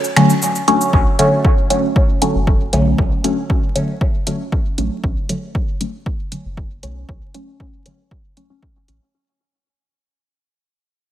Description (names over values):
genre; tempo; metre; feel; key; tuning
dub techno; 117 BPM; 4/4; straight; B minor; A4 = 440 Hz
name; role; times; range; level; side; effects
deep house drum kit; drums; 0.0-9.0 s; cabasa, finger snaps, hi-hat; -21 LUFS; equal; overdrive
filtered dub chord stab; stabs; 0.2-9.1 s; D3 to C#4; -16 LUFS; equal; phaser, sidechain pumping, dub echo
soft dub sub bass; bass; 0.9-9.0 s; F#1 to B1; -22 LUFS; equal; sidechain pumping
electronic kick drum; drums; 0.9-8.7 s; none; -17 LUFS; equal; overdrive
room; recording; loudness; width
light reverb; vinyl crackle; -14 LUFS; side -12 dB against mid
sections
0.9-9.1 A section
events
break 0.0-0.9; fade-out 0.9-9.1; filter sweep on synth stab 0.9-9.1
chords
0.0 Bm9 (rootless)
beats
0.42 | 0.93 1.45 1.96 2.47 | 2.98 3.50 4.01 4.52 | 5.04 5.55 6.06 6.57 | 7.09 7.60 8.11 8.62